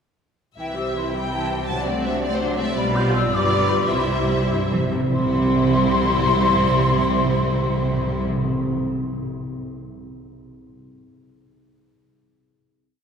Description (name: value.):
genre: quick classical-period movement for symphony orchestra.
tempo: 96-112 BPM (dotted quarters).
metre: 6/8.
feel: rubato.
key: C major.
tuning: A4 = 438 Hz.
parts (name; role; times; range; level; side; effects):
rich chamber violin section; melody; 0.6-8.2 s; B4 to E5; -30 LUFS; right 1 dB; none.
mellow hollow small flute group; second line; 0.6-8.2 s; F#5 to G6; -25 LUFS; left 2 dB; none.
rich chamber violin section; second line; 0.6-8.2 s; E4 to A5; -28 LUFS; left 2 dB; none.
warm studio viola section; accompaniment; 0.6-8.2 s; E3 to G4; -26 LUFS; equal; none.
rich chamber cello section; bass; 0.6-8.2 s; G2 to E3; -26 LUFS; right 1 dB; none.
rich chamber double bass section; bass; 0.6-8.2 s; G1 to C2; -28 LUFS; right 1 dB; none.
timpani; percussion; 1.7-8.8 s; C3; -25 LUFS; right 1 dB; none.
room: wet church reverb, RT60 3.5 s.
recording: heard from further back in the room.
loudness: -18 LUFS.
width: side -7 dB against mid.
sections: 0.6-5.1 A section; 5.1-7.5 final chord.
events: slowing down 2.2-5.1; timpani fill 3.9-5.1.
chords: 0.6 C; 1.7 D7/C; 2.8 G7/B; 3.3 G7; 3.9 C.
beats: | 0.58 1.14 | 1.69 2.23 | 2.77 3.32 | 3.90 4.50 | 5.12 5.71 | 6.29 6.88.